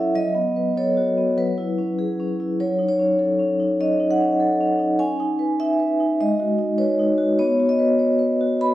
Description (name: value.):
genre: classical, contemporary piece for solo vibraphone.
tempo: 99 BPM.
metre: 4/4.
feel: rubato.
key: F# dorian.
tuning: A4 = 440 Hz.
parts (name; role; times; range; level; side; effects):
vibraphone with soft mallets; solo; 0.0-8.7 s; F#3 to B5; -18 LUFS; equal; none.
room: wet recital hall reverb, RT60 1.3 s.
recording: heard from further back in the room.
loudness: -18 LUFS.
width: side -14 dB against mid.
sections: 0.0-8.7 A section.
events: none.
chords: 0.2 A69/F#; 1.4 E69/F#; 2.6 F#m6; 5.0 C#m9; 6.2 G#m7; 7.4 Badd9.